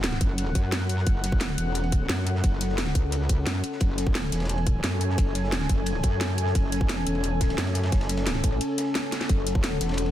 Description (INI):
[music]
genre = dark technical drum and bass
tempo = 175 BPM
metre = 4/4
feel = straight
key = F# minor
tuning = A4 = 441 Hz
[part]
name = dark analog pad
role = sustained chords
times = 0.0-10.1 s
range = C#4 to G#5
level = -31 LUFS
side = left 2 dB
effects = chorus, sidechain pumping
[part]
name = metallic wobble bass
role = bass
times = 0.0-10.1 s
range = E1 to F#2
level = -27 LUFS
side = equal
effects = distortion, chorus, tube saturation, sidechain pumping
[part]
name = crunchy breakbeat drum kit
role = drums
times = 0.0-10.1 s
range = ride cymbal, snare drum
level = -42 LUFS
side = equal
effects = high-pass filter on cymbals, high-pass filter on snare, high-pass filter on room
[part]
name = drum and bass drum kit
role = drums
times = 0.0-10.0 s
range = hi-hat, snare drum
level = -30 LUFS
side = equal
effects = soft clipping on snare
[part]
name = electronic kick drum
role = drums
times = 0.2-9.6 s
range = none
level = -24 LUFS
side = equal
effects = none
[sound]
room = light reverb, small room ambience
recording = dense, heavily limited modern master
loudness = -23 LUFS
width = side -12 dB against mid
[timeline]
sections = 0.0-10.1 A section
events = break 8.6-9.3; drum fill 9.1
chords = 0.0 F#m